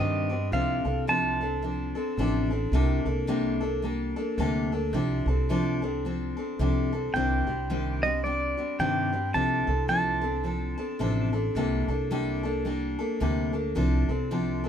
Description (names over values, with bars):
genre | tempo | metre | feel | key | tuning
acoustic folk duo or small band | 109 BPM | 4/4 | swing 60% on 8ths | C dorian | A4 = 436 Hz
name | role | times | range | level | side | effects
pedal steel guitar | melody | 0.0-2.5, 7.1-11.3 s | D5 to A5 | -28 LUFS | right 2 dB | none
picked steel-string acoustic guitar | accompaniment | 0.0-14.7 s | C3 to A4 | -28 LUFS | left 2 dB | none
upright bass | bass | 0.0-14.7 s | A1 to G2 | -29 LUFS | right 1 dB | none
room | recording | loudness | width
light reverb | minimal, uncompressed stereo recording | -25 LUFS | side -9 dB against mid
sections
0.0-14.7 A section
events
none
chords
0.0 Cmadd9; 0.5 Dm/C; 2.7 Gmadd9/C; 4.9 F6/C; 7.1 Cmadd9; 9.3 Dm/C; 11.5 Gmadd9/C; 13.8 F6/C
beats
| 0.52 1.07 1.62 2.17 | 2.73 3.28 3.83 4.38 | 4.93 5.48 6.03 6.58 | 7.13 7.68 8.24 8.79 | 9.34 9.89 10.45 11.00 | 11.55 12.10 12.65 13.21 | 13.76 14.31